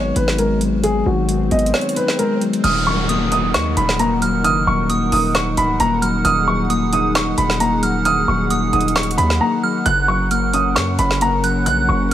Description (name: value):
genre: hip hop, trap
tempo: 133 BPM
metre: 4/4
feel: half-time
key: Eb minor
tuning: A4 = 440 Hz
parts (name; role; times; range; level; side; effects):
- dark baby grand piano; melody; 0.0-12.1 s; Gb4 to Gb6; -20 LUFS; right 1 dB; low-pass filter
- soft electric-piano-like synth keys; accompaniment; 0.0-12.1 s; Db3 to Eb5; -21 LUFS; left 3 dB; chorus, low-pass filter
- distorted 808-style bass; bass; 0.0-12.1 s; Db1 to Gb2; -22 LUFS; equal; distortion
- swell and downlifter; sound effects; 0.9-6.2 s; none; -29 LUFS; equal; none
- trap drum kit; drums; 0.2-12.1 s; crash cymbal, hi-hat, snare drum; -24 LUFS; right 1 dB; none
- delicate synth tine bell; second line; 2.6-12.1 s; Eb6 to Gb6; -23 LUFS; right 3 dB; chorus, ping-pong delay
- hollow soft pad; sustained chords; 2.6-12.1 s; Db4 to Gb5; -28 LUFS; right 1 dB; chorus
room: light reverb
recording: vinyl crackle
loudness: -15 LUFS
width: side -11 dB against mid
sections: 0.0-2.6 A section; 2.6-12.1 B section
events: swell 0.9-2.6; kick muted 1.7-2.6; drums muted 9.4-9.9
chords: 0.0 Abm7; 2.6 Ebm; 9.9 Gb